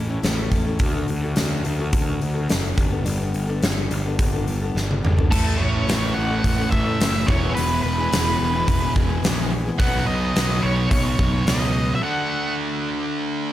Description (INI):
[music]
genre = quiet-loud alternative rock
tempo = 107 BPM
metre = 4/4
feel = straight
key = unclear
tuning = A4 = 441 Hz
[part]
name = picked steel-string acoustic guitar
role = arpeggios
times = 0.0-9.8 s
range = E2 to A4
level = -28 LUFS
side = left 4 dB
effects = none
[part]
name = fuzz picked electric bass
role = bass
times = 0.0-11.9 s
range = E1 to D2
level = -24 LUFS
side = equal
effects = overdrive
[part]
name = huge arena drum kit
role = drums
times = 0.2-11.6 s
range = crash cymbal, hi-hat, kick drum, snare drum, toms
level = -23 LUFS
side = equal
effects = none
[part]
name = octave-fuzz lead guitar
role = melody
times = 5.3-12.5 s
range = A4 to F#5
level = -26 LUFS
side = equal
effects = distortion, tape echo
[part]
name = thick fuzz guitar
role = riff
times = 5.3-13.5 s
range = E2 to D4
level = -24 LUFS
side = right 1 dB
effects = distortion
[sound]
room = light reverb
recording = none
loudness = -19 LUFS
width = side -13 dB against mid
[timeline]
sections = 0.0-5.3 A section; 5.3-13.5 B section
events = drum fill 4.8-5.3; break 12.0-13.5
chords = 0.0 A; 0.8 D; 2.8 Gadd9; 5.3 A; 7.3 E; 9.8 Badd9; 12.0 D